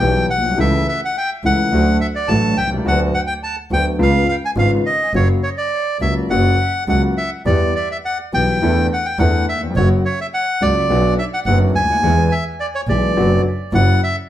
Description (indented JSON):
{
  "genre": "tango",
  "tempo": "105 BPM",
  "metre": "4/4",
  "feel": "rubato",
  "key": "B minor",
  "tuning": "A4 = 440 Hz",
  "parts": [
    { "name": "bandoneon", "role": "melody", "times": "0.0-14.2 s", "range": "C#5 to A5", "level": "-19 LUFS", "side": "equal", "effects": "analog delay" },
    { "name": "warm concert grand piano", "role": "accompaniment", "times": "0.0-14.0 s", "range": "F#1 to G#4", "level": "-19 LUFS", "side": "left 2 dB", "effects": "none" },
    { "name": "clear double bass", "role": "bass", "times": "0.0-14.0 s", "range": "F#1 to E2", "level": "-18 LUFS", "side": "right 1 dB", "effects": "none" }
  ],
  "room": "wet studio reverb, RT60 0.7 s",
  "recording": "heard from further back in the room",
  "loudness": "-14 LUFS",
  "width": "side -12 dB against mid",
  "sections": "0.0-14.3 A section",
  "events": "none",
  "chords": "0.0 Em/B; 0.6 A/C#; 1.7 D; 2.9 Bm/D; 4.0 C#7; 5.1 F#; 7.5 Em; 8.6 Asus4/E; 9.8 F#; 10.9 Bm; 12.0 E; 13.2 Bm/F#; 13.7 F#7",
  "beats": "0.00 | 0.57 1.15 1.72 2.28 | 2.85 3.42 3.99 4.56 | 5.14 5.72 6.29 6.88 | 7.46 8.04 8.62 9.19 | 9.76 10.33 10.89 11.46 | 12.03 12.60 13.17 13.74"
}